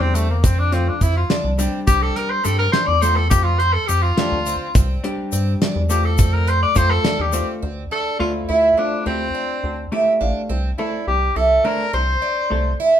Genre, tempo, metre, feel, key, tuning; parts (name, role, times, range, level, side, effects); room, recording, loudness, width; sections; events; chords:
progressive instrumental, band music in an uneven meter; 209 BPM (eighths); 5/8; straight; F major; A4 = 440 Hz
warm tenor saxophone; melody; 0.0-12.8 s; A3 to D5; -21 LUFS; left 2 dB
vintage hollow-body jazz guitar; accompaniment; 0.0-12.7 s; D3 to F5; -27 LUFS; left 1 dB
picked plugged-in twelve-string acoustic guitar; arpeggios; 0.0-13.0 s; C4 to E4; -22 LUFS; right 2 dB
rubbery square bass; bass; 0.0-12.7 s; A1 to G2; -21 LUFS; equal
damped 70s drum kit; drums; 0.2-7.5 s; hi-hat, kick drum, snare drum; -20 LUFS; equal
egg shaker; percussion; 0.2-7.6 s; -31 LUFS; left 6 dB
moderate studio reverb, RT60 0.8 s; band playing live in one room; -16 LUFS; side -10 dB against mid
0.0-7.6 A section; 7.6-13.0 B section
tenor saxophone solo 0.0-7.6; hollow-body jazz guitar fill 9.6-10.5
0.4 F; 1.9 Csus2; 3.3 F; 4.8 Csus2; 6.2 F; 7.6 Dm7; 10.5 Am/C